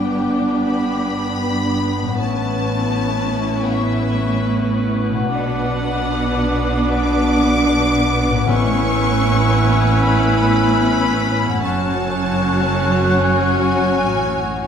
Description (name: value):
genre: cinematic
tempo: 76 BPM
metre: 4/4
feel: rubato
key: A major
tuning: A4 = 438 Hz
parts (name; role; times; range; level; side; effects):
- rich studio violin section; melody; 0.0-14.7 s; E5 to D6; -25 LUFS; left 3 dB; none
- flute section; second line; 0.0-14.7 s; C#6 to F#6; -27 LUFS; left 2 dB; none
- mellow cor anglais; second line; 0.0-14.7 s; B4 to C#5; -27 LUFS; right 3 dB; none
- warm clarinet; second line; 0.0-14.7 s; B3 to C#4; -26 LUFS; left 1 dB; none
- warm symphonic violin section; second line; 0.0-14.7 s; D4 to C#5; -28 LUFS; left 3 dB; none
- warm symphonic viola section; accompaniment; 0.0-14.7 s; F#3 to D4; -24 LUFS; right 1 dB; none
- dark French horn section; sustained chords; 0.0-14.7 s; B3 to F#4; -22 LUFS; left 2 dB; none
- concert harp; arpeggios; 0.0-14.7 s; F#2 to C#5; -28 LUFS; left 6 dB; none
- rich symphonic cello section; bass; 0.0-14.7 s; F#2 to B2; -23 LUFS; right 3 dB; none
- rich symphonic double bass section; bass; 0.0-14.7 s; F#1 to B1; -24 LUFS; right 3 dB; none
- timpani; percussion; 8.5-9.6 s; A2; -26 LUFS; left 3 dB; none
room: wet scoring stage reverb, RT60 1.6 s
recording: none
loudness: -15 LUFS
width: side -8 dB against mid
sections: 0.0-14.7 A section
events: none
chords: 0.0 G; 2.2 Aadd9; 5.3 Bm; 8.5 Aadd9; 11.6 F#m